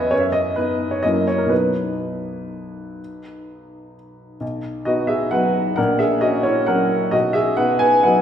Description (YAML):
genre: classical, piano waltz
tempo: 116-142 BPM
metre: 3/4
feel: rubato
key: B major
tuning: A4 = 441 Hz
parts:
  - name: warm upright piano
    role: solo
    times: 0.0-8.2 s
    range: A#1 to G#5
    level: -17 LUFS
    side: equal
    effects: none
room: wet recital hall reverb, RT60 1.8 s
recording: heard from further back in the room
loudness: -17 LUFS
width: side -9 dB against mid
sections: 0.0-4.4 A section; 4.4-8.2 B section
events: none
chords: 0.1 B/F#; 1.0 F#7; 1.5 B; 5.8 F#/A#; 7.1 B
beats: | 0.12 0.56 1.03 | 1.50 1.99 2.50 | 2.99 3.46 3.94 | 4.42 4.87 5.32 | 5.78 6.21 6.68 | 7.13 7.58 8.05